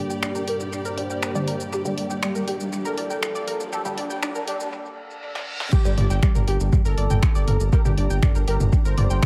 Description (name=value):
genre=melodic techno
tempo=120 BPM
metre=4/4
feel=straight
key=G minor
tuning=A4 = 438 Hz
part: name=analog synth brass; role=melody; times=0.0-9.3 s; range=G3 to C5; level=-33 LUFS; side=equal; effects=chorus, sidechain pumping, dub echo
part: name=deep dark ambient pad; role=sustained chords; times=0.0-9.3 s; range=Bb3 to A4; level=-37 LUFS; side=equal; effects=chorus, built-in reverb, sidechain pumping
part: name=analog drone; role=drone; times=0.0-4.7 s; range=G2 to G3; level=-39 LUFS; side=equal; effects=chorus, sidechain pumping
part: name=riser and reverse cymbal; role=sound effects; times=1.0-5.7 s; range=none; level=-41 LUFS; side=equal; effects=none
part: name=bright studio string section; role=texture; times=0.0-9.3 s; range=G4 to Bb5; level=-38 LUFS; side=equal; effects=sidechain pumping
part: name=analog pluck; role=arpeggios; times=0.1-9.2 s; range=G4 to G6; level=-35 LUFS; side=equal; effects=chorus, sidechain pumping, analog delay
part: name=deep house drum kit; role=drums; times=0.1-9.3 s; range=crash cymbal, finger snaps, hi-hat, shaker, snare drum, toms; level=-30 LUFS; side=equal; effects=overdrive, high-pass filter on perc, high-pass filter on hats, high-pass filter on toms, high-pass filter on snare, high-pass filter on cymbals, high-pass filter on room, tape echo
part: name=filtered dub chord stab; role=stabs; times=1.4-8.0 s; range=G2 to G3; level=-35 LUFS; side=equal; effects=phaser, subtle chorus, sidechain pumping, tape echo
part: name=electronic kick drum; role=drums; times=5.7-9.3 s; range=none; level=-21 LUFS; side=equal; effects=overdrive
part: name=round analog bass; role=bass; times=5.9-9.2 s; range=G1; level=-25 LUFS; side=equal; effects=sidechain pumping
room=light reverb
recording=echo-heavy mix, high-pass filter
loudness=-23 LUFS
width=mono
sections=0.0-5.7 A section; 5.7-9.3 B section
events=build-up 0.0-5.7; filter sweep on synth pluck 0.0-5.7; filter sweep on analog polysynth 0.0-5.7; break 4.7-5.7; reverse cymbal 4.7-5.7; drum fill 5.4-5.7; drop 5.7-9.3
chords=0.0 Gm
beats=0.23 0.73 1.23 | 1.73 2.23 2.73 3.23 | 3.73 4.23 4.73 5.23 | 5.73 6.23 6.73 7.23 | 7.73 8.23 8.73 9.23